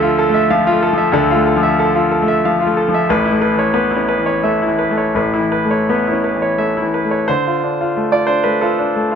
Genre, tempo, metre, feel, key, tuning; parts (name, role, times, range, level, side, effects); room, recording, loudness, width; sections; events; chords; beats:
neoclassical minimalist piano; 80-95 BPM; 3/4; rubato; D dorian; A4 = 437 Hz
clear concert grand piano; solo; 0.0-9.2 s; A1 to F5; -13 LUFS; equal
light reverb; -13 LUFS; side -7 dB against mid
0.0-7.3 A section; 7.3-9.2 B section
0.0 Dmadd9; 3.1 Aadd9; 7.3 Dm7
0.50 | 1.14 1.78 2.43 | 3.08 3.74 4.42 | 5.14 5.88 6.59 | 7.30 7.97 8.62